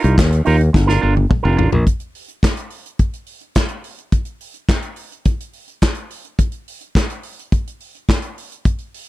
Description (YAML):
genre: disco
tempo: 106 BPM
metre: 4/4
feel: straight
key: unclear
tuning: A4 = 440 Hz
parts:
  - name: electric guitar with an envelope filter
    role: accompaniment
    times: 0.0-1.8 s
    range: D4 to Bb4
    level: -19 LUFS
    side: right 6 dB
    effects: none
  - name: modern bright fingered electric bass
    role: bass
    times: 0.0-1.8 s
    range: F1 to Eb2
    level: -14 LUFS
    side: equal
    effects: none
  - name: warm soul drum kit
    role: drums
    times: 0.0-9.1 s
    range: handclaps, hi-hat, kick drum, snare drum, toms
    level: -17 LUFS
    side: equal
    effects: none
room: little or no reverb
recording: dry, close 1970s-style studio recording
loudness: -16 LUFS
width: side -17 dB against mid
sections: 0.0-1.9 A section; 1.9-9.1 B section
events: drum fill 0.7-1.9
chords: 0.0 Cm7; 0.7 Gm7; 1.9 N.C.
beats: 0.17 0.74 1.30 | 1.87 2.43 3.00 3.56 | 4.13 4.70 5.26 5.83 | 6.39 6.96 7.53 8.09 | 8.66